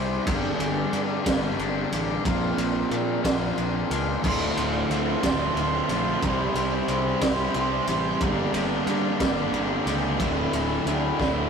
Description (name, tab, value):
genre	quiet-loud alternative rock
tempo	60 BPM (dotted quarters)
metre	6/8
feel	straight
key	unclear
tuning	A4 = 440 Hz
part	crunchy overdriven guitar	riff	0.0-11.5 s	D2 to C4	-30 LUFS	equal	none
part	fuzz guitar	riff	0.0-11.5 s	D2 to C5	-30 LUFS	left 6 dB	distortion
part	fuzz fingered electric bass	bass	0.0-11.4 s	D1 to Bb2	-31 LUFS	equal	overdrive
part	raw garage drum kit	drums	0.3-11.4 s	crash cymbal, kick drum, ride cymbal, snare drum	-27 LUFS	right 1 dB	none
part	thick fuzz guitar	riff	4.2-11.5 s	D2 to C5	-27 LUFS	right 3 dB	distortion
room	moderate stone room reverb, RT60 1.4 s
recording	rough rehearsal-room recording, warm saturation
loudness	-22 LUFS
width	side -6 dB against mid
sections	0.0-11.5 A section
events	drum fill 11.2-11.5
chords	0.3 Gm; 2.3 Bb; 4.2 Dm7; 6.2 C; 8.2 Gm; 10.2 Dsus2